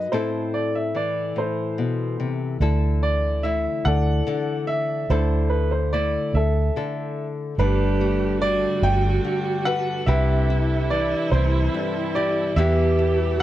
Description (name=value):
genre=acoustic folk-pop ballad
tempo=48 BPM (dotted quarters)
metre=6/8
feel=straight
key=unclear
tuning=A4 = 437 Hz
part: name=clear baby grand piano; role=melody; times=0.0-13.4 s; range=D4 to G5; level=-25 LUFS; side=right 1 dB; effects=none
part: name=nylon-string guitar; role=accompaniment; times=0.0-13.4 s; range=E2 to B4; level=-27 LUFS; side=left 5 dB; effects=none
part: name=vintage muted fingered electric bass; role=bass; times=2.6-13.4 s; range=G1 to E2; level=-21 LUFS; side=right 1 dB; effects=none
part: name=dark viola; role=second line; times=7.6-13.4 s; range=E4 to G4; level=-27 LUFS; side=right 4 dB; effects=none
part: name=rich studio string section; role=sustained chords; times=7.6-13.4 s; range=B2 to A4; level=-34 LUFS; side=right 1 dB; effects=none
room=light reverb, small room ambience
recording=none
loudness=-20 LUFS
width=side -13 dB against mid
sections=0.0-7.6 A section; 7.6-13.4 B section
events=none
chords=0.1 Am; 2.6 Dsus2; 7.6 Gadd9; 10.1 Cmaj7; 12.6 Em